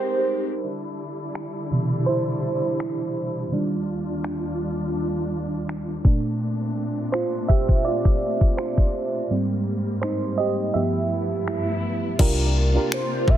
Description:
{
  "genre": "contemporary R&B",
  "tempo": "83 BPM",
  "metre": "4/4",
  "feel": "swing 54% on 16ths",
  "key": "C major",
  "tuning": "A4 = 441 Hz",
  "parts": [
    { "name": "warm velvety synth lead", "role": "melody", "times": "0.0-0.5, 12.9-13.4 s", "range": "C5 to E5", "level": "-25 LUFS", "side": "right 2 dB", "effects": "chorus, digital delay" },
    { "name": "mellow FM electric piano", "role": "accompaniment", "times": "0.0-13.4 s", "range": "G2 to E5", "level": "-24 LUFS", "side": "right 2 dB", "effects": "chorus" },
    { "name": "dark studio string section", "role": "sustained chords", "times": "0.0-13.4 s", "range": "Eb2 to G4", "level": "-28 LUFS", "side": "left 1 dB", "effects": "stereo widening, sidechain pumping" },
    { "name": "smooth R&B drum kit", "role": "drums", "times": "1.4-13.4 s", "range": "crash cymbal, finger snaps, kick drum", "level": "-20 LUFS", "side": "equal", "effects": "soft clipping on snare" },
    { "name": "deep dub picked electric bass", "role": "bass", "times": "12.2-13.4 s", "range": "Bb1 to C2", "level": "-20 LUFS", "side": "equal", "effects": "none" },
    { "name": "soft round pluck", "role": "texture", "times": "12.2-13.4 s", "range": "D5", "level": "-38 LUFS", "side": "left 6 dB", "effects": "none" }
  ],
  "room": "light reverb, digital ambience",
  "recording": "dense, heavily limited modern master, low-pass filter",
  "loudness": "-21 LUFS",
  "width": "side -11 dB against mid",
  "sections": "0.6-12.2 A section; 12.2-13.4 B section",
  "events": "break 0.0-0.6, 9.3-12.2; FM electric piano solo 0.6-12.2; filter sweep 0.6-12.2; hi-hats muted 12.2-13.4",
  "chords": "0.0 Abmaj9; 0.6 Cmaj9; 3.5 Ebmaj9; 6.0 Bbmaj9; 9.3 Abmaj9; 10.7 G13; 12.2 C9sus4",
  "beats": "| 0.62 1.35 2.07 2.79 | 3.52 4.24 4.96 5.69 | 6.41 7.13 7.85 8.58 | 9.30 10.02 10.75 11.47 | 12.19 12.91"
}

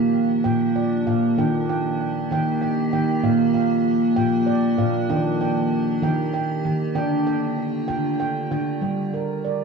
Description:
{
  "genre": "world meditative, meditative tuned percussion",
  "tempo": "65 BPM (dotted quarters)",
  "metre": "6/8",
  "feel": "straight",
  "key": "unclear",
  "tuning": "A4 = 440 Hz",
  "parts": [
    { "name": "icy glass pad", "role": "sustained chords", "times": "0.0-8.8 s", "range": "D3 to G4", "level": "-25 LUFS", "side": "left 2 dB", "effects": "chorus, built-in reverb, cassette tape" },
    { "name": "handpan", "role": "arpeggios", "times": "0.0-9.6 s", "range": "Bb2 to G5", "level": "-21 LUFS", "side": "right 2 dB", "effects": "cassette tape, tape echo" }
  ],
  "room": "wet booth ambience, RT60 0.2 s",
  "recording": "home recording on cassette, small room ambience",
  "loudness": "-19 LUFS",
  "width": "side -5 dB against mid",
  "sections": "0.0-8.8 A section",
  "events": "none",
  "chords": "0.0 Bb; 1.4 Eb; 3.2 Bb; 5.1 Eb; 7.0 Dm; 8.8 Gm",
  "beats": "0.45 | 1.38 2.31 | 3.24 4.17 | 5.10 6.03 | 6.95 7.88 | 8.81"
}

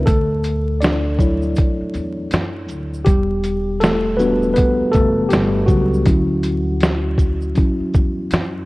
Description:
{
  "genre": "lo-fi hip hop",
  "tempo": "80 BPM",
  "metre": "4/4",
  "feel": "swing 63% on 16ths",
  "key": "D major",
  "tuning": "A4 = 440 Hz",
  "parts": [
    { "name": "mellow tine electric piano", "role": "accompaniment", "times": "0.0-8.7 s", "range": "F#3 to D5", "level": "-19 LUFS", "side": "left 1 dB", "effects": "medium stereo tremolo, cassette tape" },
    { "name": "upright bass", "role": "bass", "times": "0.0-8.7 s", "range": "E1 to F#2", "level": "-22 LUFS", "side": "equal", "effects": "none" },
    { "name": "lo-fi sampler-style drum kit", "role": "drums", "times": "0.1-8.5 s", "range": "hi-hat, kick drum, shaker, snare drum", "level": "-17 LUFS", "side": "equal", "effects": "none" },
    { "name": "tube shaker", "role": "percussion", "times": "0.1-8.5 s", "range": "none", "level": "-51 LUFS", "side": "right 4 dB", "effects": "none" }
  ],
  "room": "little or no reverb",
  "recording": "worn, warbling old tape, cassette tape, vinyl crackle, warbly pitch drift",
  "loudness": "-15 LUFS",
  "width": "side -21 dB against mid",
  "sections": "0.0-8.7 A section",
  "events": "tine electric piano solo 0.0-8.7",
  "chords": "0.1 Dmaj9; 3.1 Em7; 6.1 Dmaj9",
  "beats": "| 0.07 0.82 1.57 2.32 | 3.07 3.82 4.57 5.32 | 6.07 6.82 7.57 8.32"
}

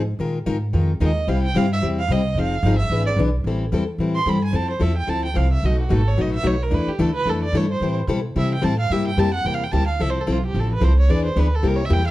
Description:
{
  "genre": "acoustic string swing (jazz manouche)",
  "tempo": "220 BPM",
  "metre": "4/4",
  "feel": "swing 56% on 8ths",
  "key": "A minor from 3.5 s",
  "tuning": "A4 = 442 Hz",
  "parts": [
    { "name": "upright bass", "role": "bass", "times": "0.0-12.1 s", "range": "F1 to C3", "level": "-21 LUFS", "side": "equal", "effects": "none" },
    { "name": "picked plugged-in steel-string acoustic guitar", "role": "accompaniment", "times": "0.2-12.0 s", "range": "B2 to Bb4", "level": "-23 LUFS", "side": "left 3 dB", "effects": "none" },
    { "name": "rich violin", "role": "melody", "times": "1.0-12.1 s", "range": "F4 to C6", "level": "-26 LUFS", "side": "right 3 dB", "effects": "plate reverb" }
  ],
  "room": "light reverb",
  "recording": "dark, warm production",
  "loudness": "-18 LUFS",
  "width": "side -16 dB against mid",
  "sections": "0.0-3.5 A section; 3.5-12.1 A section",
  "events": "violin solo 0.0-3.5, 3.5-12.1",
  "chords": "0.2 Bb7sus4; 1.3 C; 2.4 Fm7; 2.9 E7; 3.5 Am7; 4.5 Fmaj7; 5.6 B7; 6.7 E7sus4; 7.8 Am7; 8.9 C7; 10.0 Fmaj7; 11.1 E7",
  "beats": "| 0.18 0.46 0.73 1.00 | 1.27 1.55 1.82 2.09 | 2.37 2.64 2.91 3.18 | 3.46 3.73 4.00 4.27 | 4.55 4.82 5.09 5.37 | 5.64 5.91 6.18 6.46 | 6.73 7.00 7.27 7.55 | 7.82 8.09 8.36 8.64 | 8.91 9.18 9.45 9.73 | 10.00 10.27 10.54 10.82 | 11.09 11.36 11.63 11.91"
}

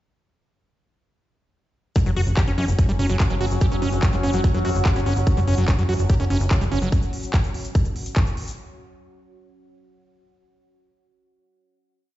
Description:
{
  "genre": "psychedelic trance",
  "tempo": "145 BPM",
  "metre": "4/4",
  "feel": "straight",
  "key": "unclear",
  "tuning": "A4 = 440 Hz",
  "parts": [
    { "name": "overtone-sweeping drone", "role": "sustained chords", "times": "2.3-7.0 s", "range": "F#3 to C#4", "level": "-33 LUFS", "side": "equal", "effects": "chorus, built-in reverb, sidechain pumping" },
    { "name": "overdriven acid bass", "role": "riff", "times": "2.0-6.9 s", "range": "F#3 to G4", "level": "-27 LUFS", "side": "moving between left 4 dB and right 4 dB", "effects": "auto-pan, sidechain pumping, dub echo" },
    { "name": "big-room dance drum kit", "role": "drums", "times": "2.0-8.6 s", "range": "handclaps, hi-hat", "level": "-32 LUFS", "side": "equal", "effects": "none" },
    { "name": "electronic kick drum", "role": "drums", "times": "2.0-8.2 s", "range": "none", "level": "-19 LUFS", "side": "equal", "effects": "none" },
    { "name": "egg shaker", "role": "percussion", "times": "2.0-8.6 s", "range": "none", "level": "-42 LUFS", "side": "left 6 dB", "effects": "none" },
    { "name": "ethereal airy pad", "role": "texture", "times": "2.6-6.9 s", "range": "F#4 to F#5", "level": "-32 LUFS", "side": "right 1 dB", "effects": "ensemble chorus, built-in reverb, phaser, sidechain pumping" },
    { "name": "plucky analog bass", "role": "bass", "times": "2.1-6.9 s", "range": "F#1 to F#2", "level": "-21 LUFS", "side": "equal", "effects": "tube saturation" }
  ],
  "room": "light reverb, digital ambience",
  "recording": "played on a big sound system in a bare room, large studio reverb, nothing above 7.7 kHz",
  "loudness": "-18 LUFS",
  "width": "side -14 dB against mid",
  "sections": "2.0-8.6 groove",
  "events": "none",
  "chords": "2.0 F#5",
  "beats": "| 1.96 2.37 2.79 3.20 | 3.61 4.03 4.44 4.86 | 5.27 5.68 6.10 6.51 | 6.92 7.34 7.75 8.16"
}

